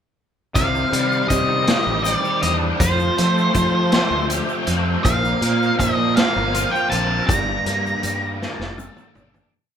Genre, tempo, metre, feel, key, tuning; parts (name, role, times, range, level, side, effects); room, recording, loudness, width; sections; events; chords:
psychedelic rock; 54 BPM (dotted quarters); 6/8; straight; C dorian; A4 = 441 Hz
octave-fuzz lead guitar; melody; 0.6-9.1 s; C5 to Bb5; -22 LUFS; equal; distortion, analog delay
overdriven tonewheel organ; sustained chords; 0.6-9.5 s; Eb3 to D5; -29 LUFS; right 4 dB; slow rotary speaker, chorus vibrato
crunchy overdriven guitar; riff; 0.6-9.5 s; G2 to A4; -24 LUFS; left 2 dB; rotary speaker
fuzz fingered electric bass; bass; 0.6-9.4 s; F1 to F3; -23 LUFS; right 1 dB; overdrive
vintage drum kit; drums; 0.6-9.5 s; hi-hat, kick drum, snare drum, toms; -22 LUFS; equal
tube shaker; percussion; 0.6-9.4 s; -35 LUFS; left 8 dB
moderate large studio reverb, RT60 0.9 s; band playing live in one room; -17 LUFS; side -8 dB against mid
0.6-9.5 verse
fade-out 7.3-9.5; drum fill 8.4-9.5
0.6 Cmadd9; 2.8 Fadd9; 5.0 Bbsus2; 7.3 Gmadd9